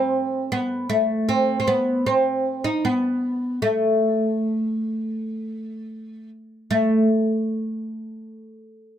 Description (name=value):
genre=turkish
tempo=77 BPM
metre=4/4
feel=straight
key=unclear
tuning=A4 = 440 Hz
part: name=oud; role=melody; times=0.0-7.1 s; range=A3 to D#4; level=-21 LUFS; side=equal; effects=none
room=light reverb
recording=none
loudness=-20 LUFS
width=side -10 dB against mid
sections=0.0-6.7 A section; 6.7-9.0 B section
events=none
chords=none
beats=| 0.51 1.28 2.06 2.84 | 3.61 4.39 5.17 5.94 | 6.72